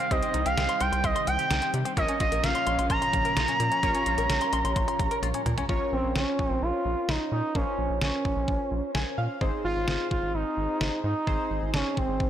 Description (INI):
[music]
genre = synth-pop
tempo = 129 BPM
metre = 4/4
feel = straight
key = Bb dorian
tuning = A4 = 440 Hz
[part]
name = expressive portamento lead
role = melody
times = 0.0-12.3 s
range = C4 to Bb5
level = -27 LUFS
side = right 2 dB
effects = chorus, tape echo
[part]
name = warm analog keys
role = accompaniment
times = 0.0-12.3 s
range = C4 to Ab5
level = -34 LUFS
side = left 1 dB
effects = chorus
[part]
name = string machine, cellos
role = sustained chords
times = 0.0-5.7 s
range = Bb2 to G4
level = -36 LUFS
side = equal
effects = phaser, ensemble chorus
[part]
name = open-back banjo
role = arpeggios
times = 0.0-5.6 s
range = G3 to C6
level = -34 LUFS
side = left 5 dB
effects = tape echo
[part]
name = detuned 8-bit digital drum machine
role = drums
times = 0.0-12.3 s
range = hi-hat, kick drum, snare drum, toms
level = -30 LUFS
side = equal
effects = none
[part]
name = rubbery square bass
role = bass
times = 0.1-12.3 s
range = Ab1 to C3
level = -30 LUFS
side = equal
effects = none
[sound]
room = light reverb, digital ambience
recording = blown-out, overdriven recording, overdrive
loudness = -24 LUFS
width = side -10 dB against mid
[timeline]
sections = 0.0-5.7 A section; 5.7-12.3 B section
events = drum fill 5.2-5.7; synth keys fill 8.7-9.4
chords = 0.0 Cm; 2.0 Bbm; 9.4 Ab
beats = | 0.11 0.58 1.04 1.51 | 1.97 2.44 2.90 3.37 | 3.83 4.30 4.76 5.23 | 5.69 6.16 6.62 7.09 | 7.55 8.02 8.48 8.95 | 9.41 9.88 10.34 10.81 | 11.27 11.74 12.20